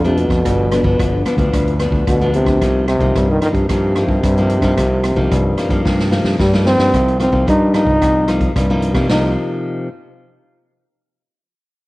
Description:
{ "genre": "samba and choro", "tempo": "111 BPM", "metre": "4/4", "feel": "straight", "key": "C minor", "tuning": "A4 = 436 Hz", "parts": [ { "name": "warm trombone", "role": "melody", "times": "0.0-9.4 s", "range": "B2 to Eb4", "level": "-17 LUFS", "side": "equal", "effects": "cassette tape" }, { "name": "nylon-string guitar", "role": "accompaniment", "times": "0.0-9.9 s", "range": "F2 to Eb4", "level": "-20 LUFS", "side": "left 1 dB", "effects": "none" }, { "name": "growling fingered electric bass", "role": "bass", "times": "0.0-9.3 s", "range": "G1 to C3", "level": "-18 LUFS", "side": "equal", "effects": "overdrive" }, { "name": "swinging big-band drum kit", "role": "drums", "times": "0.1-9.2 s", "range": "hi-hat, kick drum, rim click, snare drum, splash cymbal", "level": "-21 LUFS", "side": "equal", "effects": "cassette tape" } ], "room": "light reverb, studio reverb", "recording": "home recording on cassette", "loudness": "-13 LUFS", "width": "side -20 dB against mid", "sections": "0.0-6.9 A section; 6.9-9.1 B section; 9.1-11.3 C section", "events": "drum fill 5.9-6.9", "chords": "0.5 G7; 2.6 Cm7", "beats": "| 0.45 0.99 1.53 2.07 | 2.62 3.15 3.70 4.24 | 4.78 5.32 5.86 6.40 | 6.94 7.48 8.02 8.56 | 9.10 9.64" }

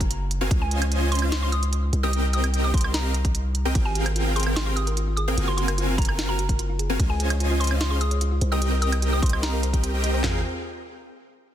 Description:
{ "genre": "future bass", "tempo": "148 BPM", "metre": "4/4", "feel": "half-time", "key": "Ab major", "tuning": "A4 = 440 Hz", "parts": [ { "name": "mallet-like synth pluck", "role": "melody", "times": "0.0-9.8 s", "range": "Ab5 to Eb6", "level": "-32 LUFS", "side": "equal", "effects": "chorus, sidechain pumping, digital delay" }, { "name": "long sustained 808-style bass", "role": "bass", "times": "0.0-10.4 s", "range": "Gb1 to Db2", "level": "-24 LUFS", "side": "equal", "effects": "sidechain pumping" }, { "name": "trap drum kit", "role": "drums", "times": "0.0-10.3 s", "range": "handclaps, kick drum, snare drum, toms", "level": "-24 LUFS", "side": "equal", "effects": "none" }, { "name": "trap drum kit", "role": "drums", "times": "0.0-10.1 s", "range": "hi-hat, ride cymbal, snare drum, woodblock", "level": "-30 LUFS", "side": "right 2 dB", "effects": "none" }, { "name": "dense compressed supersaw", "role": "riff", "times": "0.4-10.4 s", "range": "C4 to Ab5", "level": "-28 LUFS", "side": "equal", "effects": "sidechain pumping, digital delay" }, { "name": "thumb-piano-like synth pluck", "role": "arpeggios", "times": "3.8-10.4 s", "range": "F4 to Eb5", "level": "-34 LUFS", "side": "left 2 dB", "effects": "chorus, cassette tape, sidechain pumping, digital delay" } ], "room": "little or no reverb", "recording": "dense, heavily limited modern master", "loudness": "-21 LUFS", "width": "side -11 dB against mid", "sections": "0.0-10.2 A section; 10.2-11.5 B section", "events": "drop 0.0-10.2", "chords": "0.0 Gbmaj9#11; 0.5 Dbmaj9; 1.9 Cm7; 3.8 Abmaj13; 5.4 Gbmaj9#11; 7.0 Dbmaj9; 8.4 Cm7; 10.2 Abmaj13", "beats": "0.10 | 0.51 0.92 1.32 1.73 | 2.13 2.54 2.94 3.35 | 3.75 4.16 4.56 4.97 | 5.37 5.78 6.18 6.59 | 7.00 7.40 7.81 8.21 | 8.62 9.02 9.43 9.83 | 10.24" }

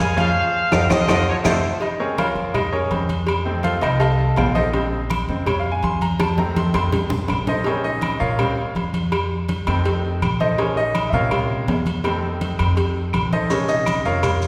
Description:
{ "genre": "latin, salsa", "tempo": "164 BPM", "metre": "4/4", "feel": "straight", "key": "Bb minor", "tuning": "A4 = 440 Hz", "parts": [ { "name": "bright trumpet section", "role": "melody", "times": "0.0-1.7 s", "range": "A4 to Ab5", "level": "-24 LUFS", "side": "equal", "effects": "none" }, { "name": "bright grand piano", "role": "accompaniment", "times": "0.0-14.5 s", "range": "C3 to C6", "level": "-26 LUFS", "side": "equal", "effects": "none" }, { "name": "upright bass", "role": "bass", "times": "0.0-14.5 s", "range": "Bb1 to Bb2", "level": "-26 LUFS", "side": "equal", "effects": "none" }, { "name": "maracas", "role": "percussion", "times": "0.0-1.5, 13.5-14.5 s", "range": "none", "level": "-38 LUFS", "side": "equal", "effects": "none" }, { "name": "clear saxophone section", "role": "second line", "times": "0.2-1.6 s", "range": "Db3 to A3", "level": "-31 LUFS", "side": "equal", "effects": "none" }, { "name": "agogo bells and timbales", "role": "percussion", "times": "0.2-14.4 s", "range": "none", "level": "-29 LUFS", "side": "equal", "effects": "none" }, { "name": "congas", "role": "percussion", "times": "0.2-14.5 s", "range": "none", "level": "-28 LUFS", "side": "equal", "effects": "none" }, { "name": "cowbell and bongos", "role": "percussion", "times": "0.2-14.4 s", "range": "none", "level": "-30 LUFS", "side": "equal", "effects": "none" }, { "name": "claves", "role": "percussion", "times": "0.7-14.4 s", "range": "none", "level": "-36 LUFS", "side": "equal", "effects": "none" } ], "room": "wet scoring stage reverb, RT60 1.7 s", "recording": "recorded in a church or concert hall", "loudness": "-20 LUFS", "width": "mono", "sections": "0.0-1.8 A section; 1.8-14.5 B section", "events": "drum fill 0.4-1.8, 6.2-7.7; band accent 0.4-1.8; grand piano solo 1.8-14.5", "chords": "0.4 F7; 1.8 Bbm7; 3.3 F7; 4.7 Bbm7; 6.2 F7; 7.7 Bbm7; 9.1 F7; 10.6 Bbm7; 12.0 F7; 13.5 Bbm7", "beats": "0.00 | 0.36 0.72 1.09 1.45 | 1.82 2.18 2.55 2.91 | 3.28 3.65 4.01 4.38 | 4.74 5.11 5.47 5.84 | 6.20 6.57 6.93 7.30 | 7.66 8.03 8.39 8.76 | 9.12 9.49 9.85 10.22 | 10.58 10.95 11.31 11.68 | 12.04 12.41 12.77 13.14 | 13.50 13.87 14.23" }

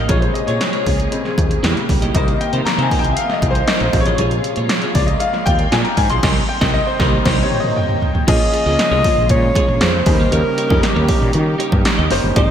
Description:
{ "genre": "polished 1980s jazz-funk pop", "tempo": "117 BPM", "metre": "4/4", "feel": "straight", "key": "Bb dorian", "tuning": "A4 = 440 Hz", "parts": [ { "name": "bright concert grand piano", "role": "accompaniment", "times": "0.0-12.5 s", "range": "C3 to C6", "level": "-20 LUFS", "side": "left 3 dB", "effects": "analog chorus" }, { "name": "muted studio string section", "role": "sustained chords", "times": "0.0-12.5 s", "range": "Bb2 to Ab4", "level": "-27 LUFS", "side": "right 2 dB", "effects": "none" }, { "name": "clean electric guitar", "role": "riff", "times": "0.0-12.5 s", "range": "Eb4 to Eb5", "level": "-26 LUFS", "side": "right 4 dB", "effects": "wide subtle chorus" }, { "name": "woody fretless electric bass", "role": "bass", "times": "0.0-12.5 s", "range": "Gb1 to Eb3", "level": "-19 LUFS", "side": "equal", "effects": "none" }, { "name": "punchy analog drum machine", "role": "drums", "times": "0.1-12.5 s", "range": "crash cymbal, hi-hat, kick drum, snare drum, toms", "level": "-18 LUFS", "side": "equal", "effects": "gated reverb" }, { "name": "breathy alto saxophone", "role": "melody", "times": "8.3-12.5 s", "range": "G4 to Eb5", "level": "-19 LUFS", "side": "equal", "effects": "none" } ], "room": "moderate lush hall reverb, RT60 1.7 s", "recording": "bright 1980s-style digital production", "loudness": "-14 LUFS", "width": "side -9 dB against mid", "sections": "0.0-8.3 A section; 8.3-12.5 B section", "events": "grand piano solo 0.0-8.3; band accent 6.2-8.3; drum fill 7.3-8.3", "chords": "0.1 Bbm7; 1.6 Edim7; 2.1 F7sus4/C; 3.9 Bbm7; 6.2 Cm7; 8.3 Bbm7; 10.1 Eb7", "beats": "| 0.10 0.61 1.12 1.63 | 2.15 2.66 3.17 3.68 | 4.19 4.70 5.21 5.73 | 6.24 6.75 7.26 7.77 | 8.28 8.79 9.30 9.81 | 10.32 10.83 11.34 11.85 | 12.36" }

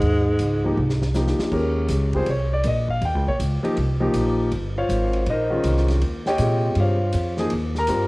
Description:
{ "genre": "modal jazz", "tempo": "160 BPM", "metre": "4/4", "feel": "swing 65% on 8ths", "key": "Eb mixolydian", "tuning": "A4 = 440 Hz", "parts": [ { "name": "breathy tenor saxophone", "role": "melody", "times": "0.0-1.2 s", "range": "Ab3", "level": "-25 LUFS", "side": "equal", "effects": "none" }, { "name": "dark bass clarinet", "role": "second line", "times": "0.0-1.2 s", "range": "Ab2", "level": "-24 LUFS", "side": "equal", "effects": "none" }, { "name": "upright bass", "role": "bass", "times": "0.0-8.1 s", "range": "G1 to Bb2", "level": "-22 LUFS", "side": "equal", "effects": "none" }, { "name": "vintage drum kit", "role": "drums", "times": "0.0-8.0 s", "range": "crash cymbal, hi-hat, kick drum, ride cymbal, snare drum", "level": "-34 LUFS", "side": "equal", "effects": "none" }, { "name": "warm concert grand piano", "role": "accompaniment", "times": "0.6-8.1 s", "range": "C3 to Bb5", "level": "-23 LUFS", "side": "left 1 dB", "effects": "none" } ], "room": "light reverb, small room reverb", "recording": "home recording on cassette", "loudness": "-19 LUFS", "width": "side -22 dB against mid", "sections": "0.0-1.5 A section; 1.5-8.1 B section", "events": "drum fill 0.8-1.5", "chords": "0.0 Fm7; 1.5 Eb13; 7.5 F7(no3)", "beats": "| 0.02 0.40 0.77 1.15 | 1.52 1.90 2.27 2.65 | 3.02 3.40 3.77 4.14 | 4.52 4.89 5.27 5.64 | 6.02 6.39 6.77 7.14 | 7.51 7.89" }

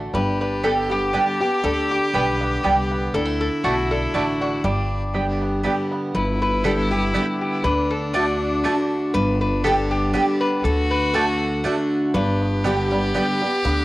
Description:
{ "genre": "bluegrass", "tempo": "120 BPM", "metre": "3/4", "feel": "swing 53% on 8ths", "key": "G major", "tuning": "A4 = 440 Hz", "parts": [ { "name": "bluegrass banjo", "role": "melody", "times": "0.0-6.1, 12.1-13.8 s", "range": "G3 to G4", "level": "-30 LUFS", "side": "right 2 dB", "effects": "cassette tape" }, { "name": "picked steel-string acoustic guitar", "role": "accompaniment", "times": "0.0-13.8 s", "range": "G2 to G4", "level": "-24 LUFS", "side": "equal", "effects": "none" }, { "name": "upright bass", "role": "bass", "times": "0.0-13.8 s", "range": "G1 to D2", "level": "-26 LUFS", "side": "equal", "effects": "none" }, { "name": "lap resonator guitar", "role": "melody", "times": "0.1-13.8 s", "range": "F#4 to D5", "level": "-26 LUFS", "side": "left 2 dB", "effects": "cassette tape" }, { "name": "clear fiddle", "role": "second line", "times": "0.1-13.8 s", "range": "D4 to G4", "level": "-26 LUFS", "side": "left 1 dB", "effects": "none" }, { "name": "mandolin", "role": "stabs", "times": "0.6-13.2 s", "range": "A3 to A5", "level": "-24 LUFS", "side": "right 3 dB", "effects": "none" } ], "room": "moderate spring reverb, RT60 1.3 s, small room ambience", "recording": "home recording on cassette", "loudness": "-19 LUFS", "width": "side -17 dB against mid", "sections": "0.0-6.1 A section; 6.1-13.8 A section", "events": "none", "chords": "0.1 G; 3.1 D; 4.6 G; 7.6 D; 9.1 G; 10.6 D; 12.1 G", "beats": "| 0.14 0.64 1.14 | 1.64 2.14 2.64 | 3.14 3.64 4.14 | 4.64 5.14 5.64 | 6.14 6.64 7.14 | 7.64 8.14 8.64 | 9.15 9.65 10.15 | 10.65 11.15 11.65 | 12.15 12.65 13.15 | 13.65" }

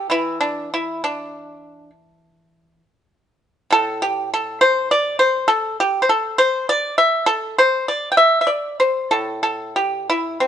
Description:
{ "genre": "chinese traditional, Chinese solo plucked strings", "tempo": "62-68 BPM", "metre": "4/4", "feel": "rubato", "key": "A yu mode", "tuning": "A4 = 440 Hz", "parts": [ { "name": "pipa", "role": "solo", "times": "0.0-10.5 s", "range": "A2 to G5", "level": "-16 LUFS", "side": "equal", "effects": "none" } ], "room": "light reverb", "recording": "band playing live in one room, nothing above 10.7 kHz", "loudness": "-16 LUFS", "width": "side -9 dB against mid", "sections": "0.0-10.5 A section", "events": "none", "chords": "none", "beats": "| 0.10 1.02 1.93 2.83 | 3.72 4.60 5.49 6.38 | 7.28 8.20 9.13 10.09" }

